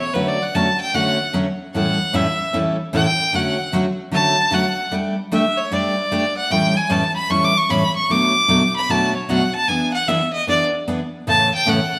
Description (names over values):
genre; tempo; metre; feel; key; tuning
country; 151 BPM; 4/4; swing 65% on 8ths; D major; A4 = 440 Hz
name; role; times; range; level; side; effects
clear fiddle; melody; 0.0-12.0 s; B4 to D6; -21 LUFS; equal; none
picked steel-string acoustic guitar; accompaniment; 0.1-11.8 s; A2 to A4; -22 LUFS; equal; none
room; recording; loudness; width
wet stone room reverb, RT60 1.4 s; band playing live in one room; -19 LUFS; mono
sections
0.0-12.0 A section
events
fiddle solo 0.0-12.0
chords
0.1 Dmaj7; 1.7 A7; 3.3 Dmaj7; 4.9 Gsus2; 6.5 A7; 8.1 Bm7; 9.7 E7; 11.3 A